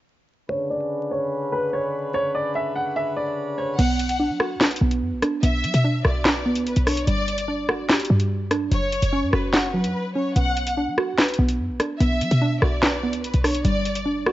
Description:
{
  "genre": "hip hop, drill",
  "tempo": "146 BPM",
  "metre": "4/4",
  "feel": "half-time",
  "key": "B minor",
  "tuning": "A4 = 439 Hz",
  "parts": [
    { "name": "clear upright piano", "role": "melody", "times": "0.5-3.7 s", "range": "B4 to F#5", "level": "-24 LUFS", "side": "right 1 dB", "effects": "low-pass filter, ping-pong delay" },
    { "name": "pedal harmonium", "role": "sustained chords", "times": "0.5-3.8 s", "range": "C#3 to B4", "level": "-29 LUFS", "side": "left 2 dB", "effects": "low-pass filter" },
    { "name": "warm symphonic violin section", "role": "second line", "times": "3.8-14.0 s", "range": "B4 to F#5", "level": "-28 LUFS", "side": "left 1 dB", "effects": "ping-pong delay" },
    { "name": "soft round pluck", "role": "accompaniment", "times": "3.8-14.3 s", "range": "F#3 to F#5", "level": "-25 LUFS", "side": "right 2 dB", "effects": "chorus" },
    { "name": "short 808-style bass", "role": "bass", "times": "3.8-14.3 s", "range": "F#1 to F#3", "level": "-23 LUFS", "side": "equal", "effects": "none" },
    { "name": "drill drum kit", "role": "drums", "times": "3.8-14.3 s", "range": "crash cymbal, handclaps, hi-hat, rim click, snare drum", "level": "-23 LUFS", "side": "equal", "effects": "none" }
  ],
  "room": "light reverb, small room ambience",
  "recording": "worn, warbling old tape, cassette tape, vinyl crackle, warbly pitch drift, nothing above 7.6 kHz",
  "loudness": "-20 LUFS",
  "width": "side -15 dB against mid",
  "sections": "0.5-3.8 A section; 3.8-14.3 B section",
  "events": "filter sweep 0.5-3.8; break 9.9-10.4",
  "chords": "0.5 Bmadd9; 3.8 Bm; 7.1 G5; 8.7 F#sus4; 10.4 Bm; 13.6 G5"
}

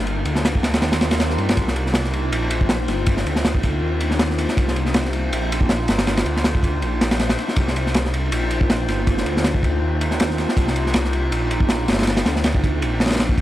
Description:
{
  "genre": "drum and bass, jungle",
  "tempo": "160 BPM",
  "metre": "4/4",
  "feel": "swing 55% on 16ths",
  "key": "C minor",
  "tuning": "A4 = 437 Hz",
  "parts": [
    { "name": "warbly tape-like pad", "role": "sustained chords", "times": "0.0-13.4 s", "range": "Bb3 to F4", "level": "-26 LUFS", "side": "equal", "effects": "chorus, built-in reverb, phaser" },
    { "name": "detuned saw bass", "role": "bass", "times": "0.0-13.4 s", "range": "G1 to G2", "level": "-23 LUFS", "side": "equal", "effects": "none" },
    { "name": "drifting glass-harmonics texture", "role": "texture", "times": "0.0-13.4 s", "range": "Bb4 to C5", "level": "-34 LUFS", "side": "left 4 dB", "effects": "chorus, built-in reverb" },
    { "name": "crunchy breakbeat drum kit", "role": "drums", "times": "0.1-13.4 s", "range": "kick drum, ride cymbal, snare drum", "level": "-20 LUFS", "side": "equal", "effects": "none" },
    { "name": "swell", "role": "sound effects", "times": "1.0-1.6 s", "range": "none", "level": "-33 LUFS", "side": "right 1 dB", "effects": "none" }
  ],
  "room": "studio reverb",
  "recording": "dry, gritty hardware recording",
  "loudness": "-17 LUFS",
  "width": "side -14 dB against mid",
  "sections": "0.0-13.4 A section",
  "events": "none",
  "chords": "0.0 Cm11"
}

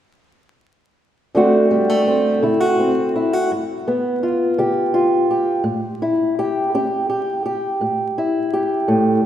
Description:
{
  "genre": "blues",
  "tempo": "56 BPM (dotted quarters)",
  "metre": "12/8",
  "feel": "straight",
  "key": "D major",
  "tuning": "A4 = 440 Hz",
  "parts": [
    { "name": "fingerpicked old ladder-braced acoustic guitar", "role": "accompaniment", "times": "1.3-9.3 s", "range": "D2 to G4", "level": "-16 LUFS", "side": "equal", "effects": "none" }
  ],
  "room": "wet concert hall reverb, RT60 2.3 s",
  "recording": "recorded in a church or concert hall, vinyl crackle",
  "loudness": "-16 LUFS",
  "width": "side -11 dB against mid",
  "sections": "1.3-9.3 A section",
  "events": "none",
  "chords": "1.3 D7; 3.5 G7; 5.7 A7"
}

